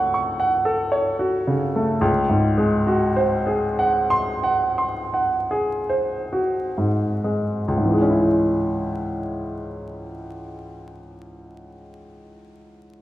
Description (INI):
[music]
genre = classical, romantic character piece for solo piano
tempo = 32-60 BPM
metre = 4/4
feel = rubato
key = C# minor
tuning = A4 = 444 Hz
[part]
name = clear baby grand piano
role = solo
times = 0.0-13.0 s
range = C#2 to C#6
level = -20 LUFS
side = equal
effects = none
[sound]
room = wet recital hall reverb, RT60 1.6 s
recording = recorded in a church or concert hall, vinyl crackle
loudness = -19 LUFS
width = side -14 dB against mid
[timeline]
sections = 0.0-7.7 A section; 7.7-13.0 B section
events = slowing down 0.0-7.7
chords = 0.0 F#m/C#; 2.0 G#7/C#; 7.7 C#m